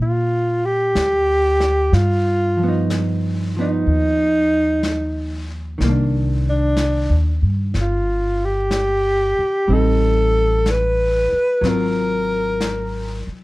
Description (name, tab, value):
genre	jazz ballad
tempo	62 BPM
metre	4/4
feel	swing 69% on 8ths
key	unclear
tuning	A4 = 440 Hz
part	breathy alto saxophone	melody	0.0-13.3 s	D4 to Cb5	-18 LUFS	equal	none
part	hollow-body jazz guitar	accompaniment	0.0-13.4 s	Eb3 to F4	-24 LUFS	right 1 dB	none
part	upright bass	bass	0.0-13.3 s	G1 to Bb2	-20 LUFS	equal	none
part	vintage brush drum kit	drums	1.0-13.4 s	brushed snare drum, hi-hat, snare drum	-30 LUFS	left 2 dB	none
room	light reverb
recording	dark, warm production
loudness	-16 LUFS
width	side -19 dB against mid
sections	0.0-13.4 A section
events	none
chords	0.0 Ebmaj9 (rootless); 1.9 Gaug7; 5.8 Cm9; 9.7 Am7b5; 11.6 Ab13